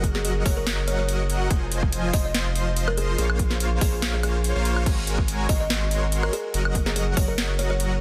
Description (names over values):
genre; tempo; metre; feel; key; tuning
future bass; 143 BPM; 4/4; swing 54% on 16ths, half-time; unclear; A4 = 439 Hz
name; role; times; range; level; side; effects
supersaw chords; riff; 0.0-8.0 s; F3 to C6; -31 LUFS; equal; subtle chorus, cassette tape, sidechain pumping
saturated sub bass; bass; 0.0-8.0 s; F1 to Bb1; -28 LUFS; equal; sidechain pumping
electronic kick drum; drums; 0.0-7.3 s; none; -26 LUFS; equal; overdrive
trap drum kit; drums; 0.0-7.9 s; crash cymbal, hi-hat, snare drum, woodblock; -31 LUFS; equal; overdrive
buzzing kalimba; melody; 0.1-7.8 s; Ab4 to Eb5; -33 LUFS; equal; sidechain pumping, digital delay
room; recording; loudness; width
light reverb; dense, heavily limited modern master; -24 LUFS; mono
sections
0.0-8.0 A section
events
none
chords
0.0 Gb6; 1.5 Fm7; 3.2 Bbmadd9; 4.9 Ab9sus4; 6.3 Gb6